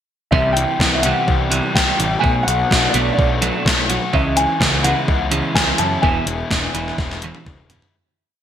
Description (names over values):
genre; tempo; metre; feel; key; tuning
indie rock; 126 BPM; 4/4; straight; unclear; A4 = 436 Hz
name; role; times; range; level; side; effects
dark upright piano; melody; 0.3-6.9 s; D5 to A5; -21 LUFS; equal; analog chorus
clean electric guitar; riff; 0.3-7.9 s; E2 to A3; -23 LUFS; right 6 dB; lush chorus
crunchy overdriven guitar; riff; 0.3-7.9 s; E2 to G4; -24 LUFS; left 6 dB; none
fuzz picked electric bass; bass; 0.3-7.8 s; E1 to F#2; -23 LUFS; equal; overdrive
gated 80s digital drum machine; drums; 0.3-7.9 s; hi-hat, kick drum, snare drum, toms; -18 LUFS; equal; gated reverb, gated reverb snare
room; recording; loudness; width
moderate lush hall reverb, RT60 1.8 s; bright 1980s-style digital production; -15 LUFS; side -9 dB against mid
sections
0.3-7.9 verse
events
fade-out 6.0-7.9; drum fill 7.0-7.9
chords
0.3 Cmaj7; 2.2 Bm7; 4.1 C#m7; 6.0 E7